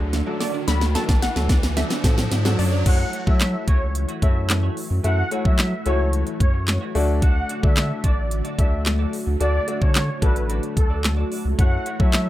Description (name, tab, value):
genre	dance-pop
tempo	110 BPM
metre	4/4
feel	straight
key	F# minor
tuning	A4 = 436 Hz
part	analog pluck	melody	0.0-2.8 s	D5 to B5	-31 LUFS	left 1 dB	chorus, dub echo
part	warm concert grand piano	accompaniment	0.0-12.3 s	F#3 to E5	-29 LUFS	left 3 dB	sidechain pumping
part	string machine, cellos	sustained chords	0.0-12.3 s	D3 to F#4	-32 LUFS	equal	ensemble chorus, sidechain pumping
part	analog pluck	arpeggios	0.0-2.8 s	D3 to D4	-33 LUFS	right 6 dB	chorus, sidechain pumping, dub echo
part	clean electric guitar	riff	0.0-12.3 s	A3 to D5	-37 LUFS	right 4 dB	lush chorus
part	saturated sub bass	bass	0.0-12.3 s	A1 to F#3	-23 LUFS	equal	sidechain pumping
part	riser	sound effects	0.0-2.9 s	none	-30 LUFS	equal	none
part	pop drum kit	drums	0.1-12.3 s	crash cymbal, handclaps, hi-hat, kick drum, snare drum	-20 LUFS	equal	none
part	filtered supersaw swell	melody	2.9-12.2 s	A4 to F#5	-30 LUFS	equal	dub echo
room	light reverb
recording	rough home demo mix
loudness	-18 LUFS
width	side -14 dB against mid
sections	0.0-2.9 A section; 2.9-12.3 B section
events	build-up 0.0-2.9; drum fill 0.0-2.9; riser 0.0-2.9; drop 2.9-12.3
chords	0.0 D; 2.9 F#m7; 7.0 D; 11.6 F#m7